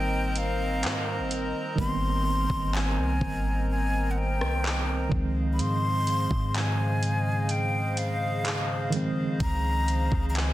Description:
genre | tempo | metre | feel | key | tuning
contemporary R&B | 63 BPM | 4/4 | straight | Ab major | A4 = 439 Hz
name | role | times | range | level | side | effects
breathy hollow jazz flute | melody | 0.0-10.5 s | F5 to C6 | -31 LUFS | left 1 dB | none
mellow tine electric piano | accompaniment | 0.0-10.5 s | Eb3 to Eb4 | -31 LUFS | right 2 dB | overdrive, fast stereo tremolo
hollow soft pad | sustained chords | 0.0-10.5 s | Db3 to Bb5 | -33 LUFS | equal | chorus
clean 808-style bass | bass | 0.0-10.5 s | Ab1 to Ab2 | -28 LUFS | equal | none
smooth R&B drum kit | drums | 0.4-10.5 s | handclaps, hi-hat, kick drum, rim click | -31 LUFS | equal | vintage 12-bit sampler grit
room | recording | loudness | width
light reverb, digital ambience | dense, heavily limited modern master | -24 LUFS | side -15 dB against mid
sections
0.0-10.5 A section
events
hi-hats muted 1.8-5.6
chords
0.0 Abmaj9; 5.1 Dbmaj9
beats
0.83 | 1.78 2.74 3.69 4.64 | 5.59 6.55 7.50 8.45 | 9.40 10.36

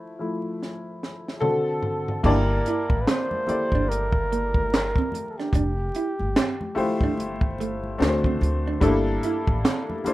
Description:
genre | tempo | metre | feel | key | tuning
R&B, neo-soul | 73 BPM | 4/4 | swing 61% on 16ths | G dorian | A4 = 440 Hz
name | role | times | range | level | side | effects
warm upright piano | accompaniment | 0.0-10.1 s | D3 to A5 | -26 LUFS | left 2 dB | none
compact cocktail drum kit | drums | 0.6-10.1 s | crash cymbal, handclaps, hi-hat, kick drum, snare drum, toms | -25 LUFS | equal | none
breathy flugelhorn | melody | 1.4-7.0 s | G4 to C5 | -28 LUFS | right 1 dB | none
upright bass | bass | 2.2-10.1 s | F1 to D2 | -27 LUFS | equal | none
congas | percussion | 2.2-10.1 s | none | -39 LUFS | left 1 dB | none
vintage hollow-body jazz guitar | second line | 2.3-10.1 s | A3 to E4 | -28 LUFS | right 4 dB | none
room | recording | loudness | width
light reverb | rough home demo mix, vinyl crackle | -21 LUFS | side -16 dB against mid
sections
0.0-2.2 A section; 2.2-10.1 B section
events
upright piano solo 0.0-2.2; drum fill 0.6-2.2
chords
0.0 Fmaj7; 1.4 D7; 2.2 Gm69; 5.5 Fmaj9; 8.0 D7; 8.8 Gm69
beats
0.59 1.42 | 2.24 3.06 3.88 4.70 | 5.53 6.35 7.17 7.99 | 8.81 9.63

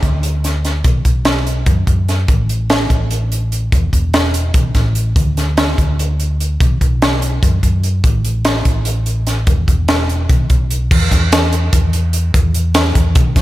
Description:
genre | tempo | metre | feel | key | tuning
math rock and midwest emo | 292 BPM (eighths) | 7/8 | straight | unclear | A4 = 441 Hz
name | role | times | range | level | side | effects
hollow-body short-scale fingered electric bass | bass | 0.0-13.4 s | E1 to F#2 | -16 LUFS | equal | none
crisp fusion drum kit | drums | 0.0-13.4 s | crash cymbal, hi-hat, kick drum, snare drum | -14 LUFS | equal | none
room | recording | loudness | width
light reverb | none | -12 LUFS | side -16 dB against mid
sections
0.0-10.9 A section; 10.9-13.4 B section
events
none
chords
none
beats
0.03 0.23 0.44 0.65 | 0.85 1.05 1.26 1.47 1.67 1.88 2.08 | 2.29 2.49 2.70 2.90 3.11 3.31 3.52 | 3.72 3.93 4.13 4.34 4.54 4.75 4.96 | 5.16 5.37 5.57 5.78 5.98 6.19 6.39 | 6.60 6.80 7.01 7.21 7.42 7.62 7.83 | 8.04 8.24 8.45 8.65 8.86 9.06 9.27 | 9.47 9.68 9.88 10.09 10.29 10.50 10.70 | 10.91 11.11 11.32 11.52 11.72 11.93 12.13 | 12.34 12.54 12.75 12.95 13.16 13.36

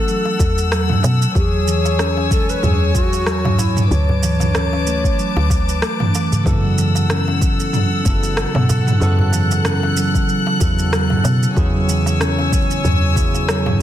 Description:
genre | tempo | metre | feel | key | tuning
organic downtempo | 94 BPM | 4/4 | swing 56% on 16ths | F# minor | A4 = 442 Hz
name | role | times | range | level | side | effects
breathy hollow bansuri | melody | 0.0-5.8 s | E4 to C#5 | -24 LUFS | left 2 dB | ping-pong delay
warm chamber string section | sustained chords | 0.0-13.8 s | A4 to F#6 | -23 LUFS | left 3 dB | sidechain pumping
steel tongue drum | arpeggios | 0.0-13.8 s | C#3 to C#4 | -22 LUFS | right 1 dB | ping-pong delay
deep house drum kit | drums | 0.1-13.8 s | rim click, shaker, toms | -22 LUFS | right 1 dB | overdrive
darbuka | percussion | 0.3-13.8 s | none | -26 LUFS | right 1 dB | none
woody FM bass | bass | 0.4-13.8 s | F#1 to B2 | -19 LUFS | equal | sidechain pumping
electronic kick drum | drums | 0.4-13.3 s | none | -19 LUFS | equal | overdrive
bell-like tine electric piano | accompaniment | 6.4-13.8 s | C#3 to A4 | -23 LUFS | right 2 dB | sidechain pumping, ping-pong delay
room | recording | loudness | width
light reverb, small room ambience | dense, heavily limited modern master | -14 LUFS | side -12 dB against mid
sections
0.0-13.8 A section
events
none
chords
0.0 F#m7; 1.4 E6; 3.9 Bm7/D; 6.5 F#m7; 11.6 E6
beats
0.08 0.72 | 1.35 1.99 2.63 3.27 | 3.91 4.55 5.18 5.82 | 6.46 7.10 7.74 8.38 | 9.01 9.65 10.29 10.93 | 11.57 12.21 12.84 13.48

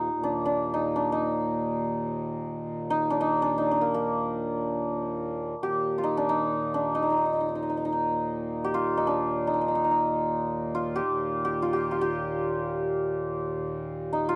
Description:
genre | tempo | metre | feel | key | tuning
indian classical, Hindustani | free time | none | none | Eb raga hamsadhwani | A4 = 438 Hz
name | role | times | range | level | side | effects
santur | melody | 0.0-14.4 s | Bb3 to G4 | -29 LUFS | equal | none
pedal harmonium | drone | 0.0-14.4 s | Eb2 to Bb2 | -35 LUFS | equal | none
room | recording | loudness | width
light reverb | dry, close 1970s-style studio recording | -28 LUFS | mono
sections
0.0-14.4 A section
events
none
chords
none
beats
free time

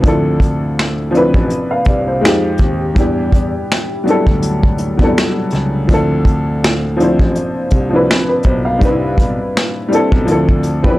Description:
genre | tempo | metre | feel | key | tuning
lo-fi hip hop | 82 BPM | 4/4 | swing 55% on 16ths | D dorian | A4 = 442 Hz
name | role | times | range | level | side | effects
warm upright piano | accompaniment | 0.0-11.0 s | F3 to F5 | -15 LUFS | left 1 dB | cassette tape, low-pass filter
warm grand piano | bass | 0.0-11.0 s | A1 to F2 | -19 LUFS | equal | transformer saturation
vintage brush drum kit | drums | 0.0-11.0 s | finger snaps, hi-hat, kick drum, snare drum | -15 LUFS | equal | none
flamenco guitar | second line | 10.8-11.0 s | G4 to B4 | -26 LUFS | right 2 dB | low-pass filter, tape echo
room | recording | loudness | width
light reverb | dry, gritty hardware recording, cassette tape | -12 LUFS | side -17 dB against mid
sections
0.0-11.0 A section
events
none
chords
0.0 Dm7; 2.2 Fm7; 3.0 Em7; 5.9 Dm7; 8.8 Cmaj7; 10.3 Dm7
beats
| 0.03 0.77 1.50 2.23 | 2.96 3.69 4.42 5.16 | 5.89 6.62 7.35 8.08 | 8.81 9.55 10.28

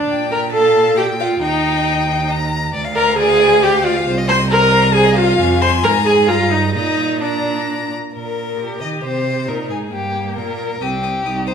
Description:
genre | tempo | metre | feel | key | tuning
quick classical-period movement for string quartet | 135 BPM | 3/4 | straight | Eb major | A4 = 440 Hz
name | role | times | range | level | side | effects
dark violin | melody | 0.0-11.5 s | G4 to Eb6 | -21 LUFS | left 9 dB | none
rich viola | accompaniment | 0.0-11.5 s | Bb3 to C5 | -16 LUFS | right 1 dB | none
rich violin | second line | 0.1-11.5 s | G4 to Bb5 | -23 LUFS | left 3 dB | none
clear cello | bass | 0.1-11.5 s | C2 to Eb3 | -21 LUFS | right 3 dB | none
room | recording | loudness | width
wet recital hall reverb, RT60 1.6 s | minimal, uncompressed stereo recording | -14 LUFS | side -7 dB against mid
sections
0.0-8.1 A section; 8.1-11.5 B section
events
none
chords
0.1 Gm/Bb; 1.4 Eb; 2.7 Ddim; 4.1 Cm; 5.4 Fm; 6.3 Eb/G; 6.8 Bb; 8.1 Eb/Bb; 9.5 Eb; 10.8 Cm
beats
| 0.09 0.53 0.98 | 1.42 1.86 2.30 | 2.74 3.18 3.62 | 4.07 4.50 4.95 | 5.39 5.84 6.29 | 6.75 7.22 7.68 | 8.14 8.59 9.04 | 9.48 9.93 10.37 | 10.81 11.26

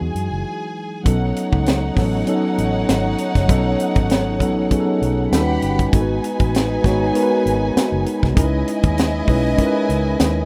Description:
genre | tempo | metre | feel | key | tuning
lush 1970s-style soul | 98 BPM | 4/4 | swing 54% on 16ths | unclear | A4 = 443 Hz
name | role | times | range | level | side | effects
warm studio string section | second line | 0.0-10.5 s | D#4 to B5 | -27 LUFS | equal | none
mellow tine electric piano | accompaniment | 0.0-10.5 s | E3 to C#5 | -23 LUFS | equal | none
mellow French horn section | sustained chords | 0.0-10.5 s | B2 to F#4 | -34 LUFS | equal | none
vintage muted fingered electric bass | bass | 0.0-10.4 s | F#1 to F#2 | -24 LUFS | equal | none
tight funk drum kit | drums | 0.2-10.4 s | hi-hat, kick drum, snare drum | -20 LUFS | equal | none
room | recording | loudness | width
light reverb | rough home demo mix | -18 LUFS | mono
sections
0.0-1.1 A section; 1.1-10.5 B section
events
tine electric piano solo 0.0-1.1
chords
0.0 Emaj9; 1.1 B9; 5.3 D#7alt; 5.9 G#m7; 8.4 C#m9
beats
0.45 | 1.06 1.67 2.28 2.88 | 3.49 4.10 4.71 5.32 | 5.93 6.54 7.15 7.76 | 8.37 8.98 9.59 10.20

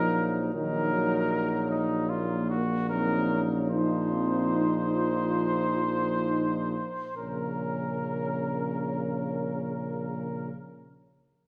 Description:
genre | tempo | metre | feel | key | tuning
classical, brass quintet | 64-79 BPM | 4/4 | rubato | Bb minor | A4 = 440 Hz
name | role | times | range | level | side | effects
warm trumpet | melody | 0.0-10.5 s | Eb4 to C5 | -35 LUFS | equal | none
warm flugelhorn | second line | 0.0-10.5 s | Eb4 to Bb4 | -37 LUFS | equal | none
clear French horn | accompaniment | 0.0-10.5 s | F3 to Db4 | -38 LUFS | equal | none
mellow euphonium | accompaniment | 0.0-10.5 s | Db3 to F4 | -36 LUFS | equal | none
clear tuba | bass | 0.0-10.5 s | Bb1 | -34 LUFS | equal | none
room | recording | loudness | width
wet recital hall reverb, RT60 1.4 s | recorded in a church or concert hall | -29 LUFS | mono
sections
0.0-7.2 A section; 7.2-10.7 B section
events
slowing down 0.0-7.2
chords
0.0 Ebm/Bb; 3.7 F5/Bb; 7.2 Bbm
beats
| 0.54 1.31 2.10 2.90 | 3.71 4.53 5.38 6.25 | 7.17 8.06 8.94 9.81

